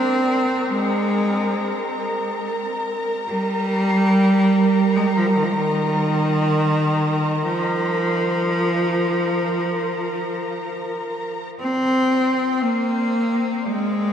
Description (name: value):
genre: ambient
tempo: free time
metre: none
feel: none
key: unclear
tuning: A4 = 436 Hz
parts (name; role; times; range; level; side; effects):
- rich cello; melody; 0.0-14.1 s; Eb3 to C4; -19 LUFS; equal; shimmer reverb, tape echo
- dark symphonic violin section; texture; 0.0-14.1 s; Bb4 to D6; -26 LUFS; equal; shimmer reverb
room: wet huge ambient reverb, RT60 8.0 s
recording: dark, warm production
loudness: -18 LUFS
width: side -8 dB against mid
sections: 0.0-11.6 A section; 11.6-14.1 B section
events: none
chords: none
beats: free time